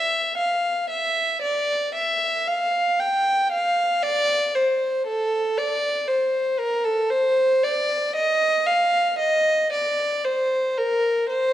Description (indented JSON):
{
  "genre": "classical, baroque-style suite movement for unaccompanied violin",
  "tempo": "58 BPM",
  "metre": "4/4",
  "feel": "rubato",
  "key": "F major",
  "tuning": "A4 = 440 Hz",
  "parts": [
    { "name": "warm violin", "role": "solo", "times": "0.0-11.5 s", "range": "A4 to G5", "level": "-20 LUFS", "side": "equal", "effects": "none" }
  ],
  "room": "moderate recital hall reverb, RT60 1.6 s",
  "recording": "dark, warm production",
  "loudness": "-20 LUFS",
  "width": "side -12 dB against mid",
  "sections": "0.0-11.5 A section",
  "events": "none",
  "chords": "none",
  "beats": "0.91 1.95 | 3.00 4.04 5.07 6.09 | 7.11 8.15 9.20 10.26 | 11.30"
}